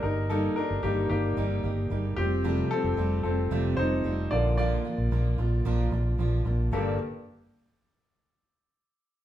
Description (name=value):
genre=pop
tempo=112 BPM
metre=4/4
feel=straight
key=G minor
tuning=A4 = 440 Hz
part: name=clear baby grand piano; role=accompaniment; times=0.0-7.0 s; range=G2 to D5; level=-30 LUFS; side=left 2 dB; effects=none
part: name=fingerpicked steel-string acoustic guitar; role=riff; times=0.0-6.9 s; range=F2 to A4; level=-32 LUFS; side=right 4 dB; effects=none
part: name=vintage muted fingered electric bass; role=bass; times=0.0-7.0 s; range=F1 to Bb1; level=-28 LUFS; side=equal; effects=none
room=moderate large studio reverb, RT60 0.9 s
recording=band playing live in one room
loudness=-25 LUFS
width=side -12 dB against mid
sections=0.0-6.7 A section; 6.7-8.9 B section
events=grand piano solo 0.0-6.7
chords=0.0 Eb/G; 2.2 Fadd9; 4.3 Bb; 6.7 Gmadd9